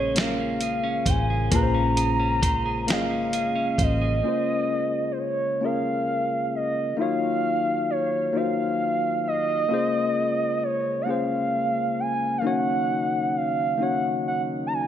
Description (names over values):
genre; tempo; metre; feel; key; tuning
slow six-eight R&B; 44 BPM (dotted quarters); 6/8; straight; Bb minor; A4 = 435 Hz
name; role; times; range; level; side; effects
gliding portamento lead; melody; 0.0-14.9 s; C5 to Bb5; -25 LUFS; right 1 dB; chorus
clean electric guitar; second line; 0.0-4.8 s; Bb3 to C5; -32 LUFS; right 7 dB; none
mellow tine electric piano; accompaniment; 0.0-14.9 s; Bb3 to Eb5; -27 LUFS; left 5 dB; lush chorus
mellow tonewheel organ; sustained chords; 0.0-14.9 s; Db3 to F5; -35 LUFS; right 2 dB; chorus vibrato, slow rotary speaker
vintage muted fingered electric bass; bass; 0.0-4.2 s; Ab1 to Bb1; -27 LUFS; equal; none
dusty soul sampler-style drum kit; drums; 0.2-4.0 s; hi-hat, kick drum, snare drum; -25 LUFS; equal; gated reverb
room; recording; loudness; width
moderate plate reverb, RT60 2.4 s; bright 1980s-style digital production; -22 LUFS; side -10 dB against mid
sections
0.0-4.2 A section; 4.2-14.9 A section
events
none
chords
0.0 Bbm9; 7.0 Ebm9; 9.7 Bbm9; 12.4 Ebm7